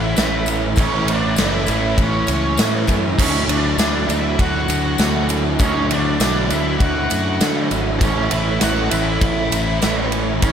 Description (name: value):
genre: rock, shoegaze and dream pop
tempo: 100 BPM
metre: 4/4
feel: straight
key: D major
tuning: A4 = 440 Hz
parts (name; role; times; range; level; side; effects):
- octave-fuzz lead guitar; melody; 0.0-10.5 s; C#4 to F#4; -24 LUFS; equal; distortion, tape echo
- electric guitar through a small old amp; riff; 0.0-10.5 s; A2 to E4; -22 LUFS; right 8 dB; reverse reverb
- thick fuzz guitar; riff; 0.0-10.5 s; A2 to D4; -24 LUFS; left 10 dB; distortion, lush chorus
- growling fingered electric bass; bass; 0.0-10.5 s; F#1 to D3; -23 LUFS; equal; overdrive
- big rock drum kit; drums; 0.2-10.5 s; crash cymbal, kick drum, ride cymbal, snare drum; -21 LUFS; equal; none
- tambourine; percussion; 0.2-10.5 s; none; -32 LUFS; left 12 dB; none
room: moderate plate reverb, RT60 1.6 s, small room ambience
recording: dreamy mix soaked in reverb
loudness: -16 LUFS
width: side -8 dB against mid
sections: 0.0-10.5 A section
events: none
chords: 0.0 A; 3.2 Dadd9; 8.0 A